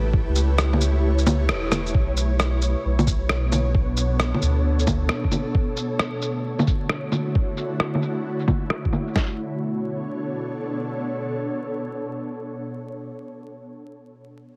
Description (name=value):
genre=future garage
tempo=133 BPM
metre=4/4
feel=swing 65% on 16ths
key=B minor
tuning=A4 = 439 Hz
part: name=ethereal airy pad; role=sustained chords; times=0.0-12.5 s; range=B2 to C#5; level=-30 LUFS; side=equal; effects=ensemble chorus, built-in reverb, sidechain pumping
part: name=soft dub sub bass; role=bass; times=0.0-5.1 s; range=E1 to D2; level=-24 LUFS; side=equal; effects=sidechain pumping
part: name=lo-fi sampler-style drum kit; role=drums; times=0.1-9.3 s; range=kick drum, snare drum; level=-24 LUFS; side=equal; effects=none
part: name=electronic shaker, rim click and bongos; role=drums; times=0.4-9.1 s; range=none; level=-27 LUFS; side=equal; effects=low-pass filter on perc, low-pass filter on snare
room=moderate lush hall reverb, RT60 1.8 s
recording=heavily compressed radio sound, vinyl crackle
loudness=-23 LUFS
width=mono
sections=0.0-1.9 A section; 1.9-9.2 B section; 9.2-12.8 C section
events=kick drops out 1.0-1.9; band accent 1.5; filter sweep on drum 1.9-9.2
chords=0.0 A7; 1.9 Bm7; 5.5 Dmaj7; 9.2 Bm7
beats=| 0.13 0.58 1.03 1.49 | 1.94 2.39 2.84 3.29 | 3.74 4.19 4.64 5.09 | 5.55 6.00 6.45 6.90 | 7.35 7.80 8.25 8.70 | 9.15 9.61 10.06 10.51 | 10.96 11.41 11.86 12.31